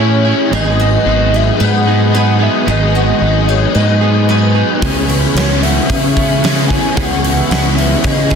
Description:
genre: rock, shoegaze and dream pop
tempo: 112 BPM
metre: 4/4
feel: straight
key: unclear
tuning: A4 = 442 Hz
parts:
  - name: pure sine lead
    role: melody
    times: 0.0-8.4 s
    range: C#5 to G#5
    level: -19 LUFS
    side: left 1 dB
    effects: chorus, slapback echo
  - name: string machine, cellos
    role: sustained chords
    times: 0.0-8.4 s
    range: E4 to D#6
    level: -25 LUFS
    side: equal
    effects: ensemble chorus
  - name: direct-recorded clean electric guitar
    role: riff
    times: 0.0-8.4 s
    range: G#2 to G#4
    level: -18 LUFS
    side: right 12 dB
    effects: reverse reverb
  - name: overdriven electric guitar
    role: riff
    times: 0.0-8.4 s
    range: G#2 to E4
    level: -18 LUFS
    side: left 13 dB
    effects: ensemble chorus
  - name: overdriven fingered electric bass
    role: bass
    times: 0.0-8.4 s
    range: G#1 to C#3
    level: -14 LUFS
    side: equal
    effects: none
  - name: picked twelve-string acoustic guitar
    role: arpeggios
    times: 0.5-8.4 s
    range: E4 to B4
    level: -23 LUFS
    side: left 1 dB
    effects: lush chorus, slapback echo
  - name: big rock drum kit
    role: drums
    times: 4.8-8.4 s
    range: hi-hat, kick drum, snare drum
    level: -16 LUFS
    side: equal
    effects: none
room: light reverb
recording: dense, heavily limited modern master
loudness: -10 LUFS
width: side -6 dB against mid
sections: 0.0-8.4 A section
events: none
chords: 0.0 Amaj7; 0.5 G#m7; 4.8 C#m7

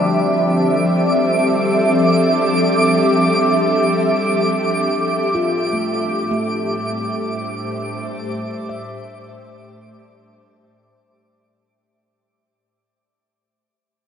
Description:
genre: ambient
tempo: free time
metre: none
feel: none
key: unclear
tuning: A4 = 440 Hz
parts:
  - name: ethereal airy pad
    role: sustained chords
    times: 0.0-11.8 s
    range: A2 to E5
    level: -18 LUFS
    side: equal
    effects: ensemble chorus, built-in reverb, shimmer reverb
  - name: handpan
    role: arpeggios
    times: 0.0-11.1 s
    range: A3 to E5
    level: -27 LUFS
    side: equal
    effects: tape echo, shimmer reverb
  - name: analog drone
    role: drone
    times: 0.0-11.8 s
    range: G3 to D4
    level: -25 LUFS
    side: left 1 dB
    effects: chorus
  - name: twinkling granular texture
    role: texture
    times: 0.0-11.8 s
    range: D6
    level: -23 LUFS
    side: right 1 dB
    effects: built-in reverb, shimmer reverb
room: wet huge ambient reverb, RT60 9.2 s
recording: none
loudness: -15 LUFS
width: side -8 dB against mid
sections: 0.0-11.8 A section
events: fade-out 3.3-11.8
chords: 0.0 Fmaj7; 5.4 Am7

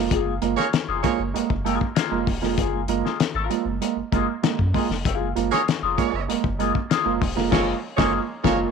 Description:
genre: funk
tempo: 97 BPM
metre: 4/4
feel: straight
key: unclear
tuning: A4 = 440 Hz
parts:
  - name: warm upright piano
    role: stabs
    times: 0.0-8.7 s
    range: F3 to Bb3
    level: -25 LUFS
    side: right 14 dB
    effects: none
  - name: round analog bass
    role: bass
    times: 0.0-8.7 s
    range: E1 to Gb2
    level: -28 LUFS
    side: equal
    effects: none
  - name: clean electric guitar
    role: accompaniment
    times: 0.1-8.7 s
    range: Bb3 to Bb4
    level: -27 LUFS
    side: left 10 dB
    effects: wah
  - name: cloth-damped thuddy drum kit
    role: drums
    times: 0.1-8.6 s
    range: crash cymbal, hi-hat, kick drum, snare drum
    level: -24 LUFS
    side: left 6 dB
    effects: none
  - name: warm horn section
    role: second line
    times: 0.6-1.2, 5.5-8.6 s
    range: Bb3 to Db5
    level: -27 LUFS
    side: right 10 dB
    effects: none
room: moderate spring reverb, RT60 1.9 s, small room ambience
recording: 1960s-style stereo with parts hard left and right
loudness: -20 LUFS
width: side -6 dB against mid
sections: 0.0-8.7 A section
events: band accent 7.5-8.7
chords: 0.0 Gbmaj9

